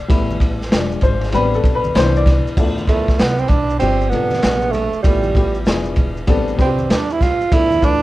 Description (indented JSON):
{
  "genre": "hip hop, jazz-hop",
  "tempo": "97 BPM",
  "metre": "4/4",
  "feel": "swing 65% on 16ths",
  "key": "D dorian",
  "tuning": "A4 = 440 Hz",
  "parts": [
    { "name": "upright bass", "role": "bass", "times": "0.0-8.0 s", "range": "E1 to Eb2", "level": "-22 LUFS", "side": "equal", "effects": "none" },
    { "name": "dark grand piano", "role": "accompaniment", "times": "0.1-8.0 s", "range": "C3 to D5", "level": "-21 LUFS", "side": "left 3 dB", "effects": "none" },
    { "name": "crunchy breakbeat drum kit", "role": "drums", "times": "0.1-8.0 s", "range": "crash cymbal, hi-hat, kick drum, ride cymbal, snare drum", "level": "-18 LUFS", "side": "equal", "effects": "none" },
    { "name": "maracas and congas", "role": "percussion", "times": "0.1-8.0 s", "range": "none", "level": "-32 LUFS", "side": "right 2 dB", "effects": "none" },
    { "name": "mellow tenor saxophone", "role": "melody", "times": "2.9-8.0 s", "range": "G3 to F4", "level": "-18 LUFS", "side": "right 4 dB", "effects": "none" }
  ],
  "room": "studio reverb",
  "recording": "rough home demo mix",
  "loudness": "-14 LUFS",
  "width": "side -16 dB against mid",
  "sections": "0.0-2.6 A section; 2.6-8.0 A section",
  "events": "grand piano solo 0.0-2.6; tenor saxophone solo 2.6-8.0",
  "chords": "0.1 Emadd11/A; 0.7 E7b9; 1.3 Am11; 2.0 Cmaj9; 2.6 Dm69; 3.8 G7sus4; 5.0 Fmaj9#11/A; 5.7 E7b9; 6.3 Am11; 7.5 Dm69"
}